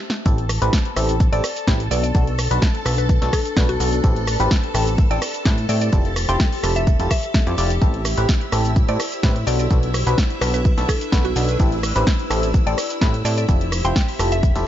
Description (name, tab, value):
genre	piano house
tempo	127 BPM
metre	4/4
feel	straight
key	A minor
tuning	A4 = 439 Hz
part	house drum kit	drums	0.1-14.6 s	cabasa, hi-hat, rim click, snare drum	-25 LUFS	equal	none
part	string machine, violins	sustained chords	0.3-14.7 s	E4 to A5	-30 LUFS	left 1 dB	ensemble chorus, sidechain pumping
part	barking FM electric piano	riff	0.3-14.7 s	B3 to D5	-25 LUFS	left 1 dB	phaser, sidechain pumping, ping-pong delay
part	plucky analog bass	bass	0.3-14.6 s	F1 to A2	-21 LUFS	equal	sidechain pumping
part	electronic kick drum	drums	0.3-14.5 s	none	-18 LUFS	equal	none
part	granular cloud pad	texture	1.7-14.7 s	D4 to E5	-32 LUFS	left 1 dB	built-in reverb, sidechain pumping
part	mallet-like synth pluck	melody	1.3-14.5 s	F#4 to G5	-28 LUFS	equal	chorus, ping-pong delay
room	little or no reverb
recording	nothing above 7.6 kHz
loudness	-16 LUFS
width	side -11 dB against mid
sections	0.3-14.7 A section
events	drum fill 0.0; stop 0.0; drop 0.3-14.7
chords	0.3 Am7; 1.9 Bm7; 4.0 Am7; 5.9 Fmaj9; 7.8 Am7; 9.5 Bm7; 11.6 Am7; 13.5 Fmaj9